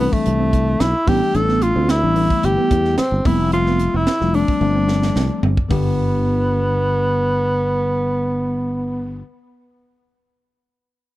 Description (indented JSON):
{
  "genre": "electric jazz fusion",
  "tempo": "110 BPM",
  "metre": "4/4",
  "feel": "straight",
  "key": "G mixolydian",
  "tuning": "A4 = 438 Hz",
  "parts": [
    { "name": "breathy tenor saxophone", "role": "melody", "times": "0.0-9.2 s", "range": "A3 to A4", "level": "-20 LUFS", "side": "equal", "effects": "none" },
    { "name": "tine electric piano", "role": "accompaniment", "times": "0.0-9.2 s", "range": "D3 to E5", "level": "-24 LUFS", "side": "left 6 dB", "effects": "none" },
    { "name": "mellow electric guitar", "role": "stabs", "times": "0.0-5.9 s", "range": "G3 to E4", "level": "-26 LUFS", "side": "right 6 dB", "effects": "lush chorus" },
    { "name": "sustaining fretless electric bass", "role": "bass", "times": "0.0-9.2 s", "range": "F1 to E2", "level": "-20 LUFS", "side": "equal", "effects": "none" },
    { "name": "crisp fusion drum kit", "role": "drums", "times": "0.1-5.8 s", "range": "hi-hat, kick drum, snare drum, toms", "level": "-22 LUFS", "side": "right 1 dB", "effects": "none" }
  ],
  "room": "light reverb",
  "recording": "none",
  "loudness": "-16 LUFS",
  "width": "side -16 dB against mid",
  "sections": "0.0-5.7 A section; 5.7-10.1 B section",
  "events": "drum fill 4.6-5.7",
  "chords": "0.0 C6; 1.1 A9sus4; 3.3 Fmaj9; 4.6 G7sus4; 5.7 G"
}